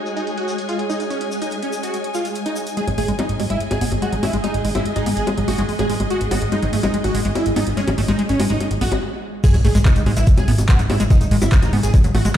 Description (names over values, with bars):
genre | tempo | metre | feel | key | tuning
psychedelic trance | 144 BPM | 4/4 | straight | unclear | A4 = 439 Hz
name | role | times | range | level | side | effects
swarming drone | sustained chords | 0.0-12.4 s | G#3 to G#4 | -28 LUFS | right 1 dB | built-in reverb, sidechain pumping
dark studio string section | texture | 0.0-9.0 s | F#4 to G#5 | -30 LUFS | left 1 dB | sidechain pumping
tube shaker | percussion | 0.1-2.8, 9.4-12.3 s | none | -36 LUFS | left 2 dB | none
supersaw stab | melody | 0.2-12.3 s | C#4 to G#4 | -26 LUFS | right 1 dB | phaser, sidechain pumping, tape echo
big-room dance drum kit | drums | 0.2-12.3 s | bongos, crash cymbal, handclaps, hi-hat | -27 LUFS | left 2 dB | overdrive
liquid acid bass | riff | 2.8-12.3 s | F#3 to B3 | -24 LUFS | equal | chorus, auto-pan, sidechain pumping, tape echo
plucky analog bass | bass | 2.9-12.3 s | G#1 to G#2 | -20 LUFS | equal | none
electronic kick drum | drums | 9.4-12.0 s | none | -14 LUFS | equal | overdrive
impact | sound effects | 9.4-11.1 s | none | -23 LUFS | equal | none
room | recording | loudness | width
light reverb | played on a big sound system in a bare room, large studio reverb, low-pass filter | -16 LUFS | side -11 dB against mid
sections
0.0-2.8 A section; 2.8-9.4 B section; 9.4-12.4 C section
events
build-up 2.8-9.4; filter sweep on acid bass 2.8-9.4; stop 9.0-9.4; drop 9.4-12.4; impact 9.4-11.1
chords
0.0 F#5; 2.8 G#5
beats
0.27 0.69 | 1.10 1.52 1.94 2.35 | 2.77 3.19 3.60 4.02 | 4.44 4.85 5.27 5.69 | 6.10 6.52 6.94 7.35 | 7.77 8.19 8.60 9.02 | 9.44 9.85 10.27 10.69 | 11.10 11.52 11.94 12.35